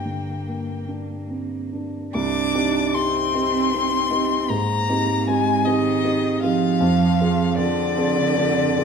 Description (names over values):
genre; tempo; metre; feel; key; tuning
classical, slow romantic movement for piano trio; 46-53 BPM (dotted quarters); 12/8; rubato; C minor; A4 = 441 Hz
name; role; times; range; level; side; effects
rich violin; melody; 0.0-8.8 s; D5 to D6; -23 LUFS; left 8 dB; none
rich cello; second line; 0.0-8.8 s; D3 to D4; -25 LUFS; right 7 dB; none
dark grand piano; accompaniment; 0.0-8.8 s; C2 to Ab4; -22 LUFS; right 2 dB; none
room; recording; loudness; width
wet recital hall reverb, RT60 1.6 s; recorded in a church or concert hall; -19 LUFS; side -6 dB against mid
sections
0.0-2.1 A section; 2.1-8.8 B section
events
none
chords
0.0 Gm; 2.1 Cm; 4.5 Abmaj7; 6.8 Dm7b5/F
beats
0.88 | 2.14 3.33 4.50 5.66 | 6.81 7.97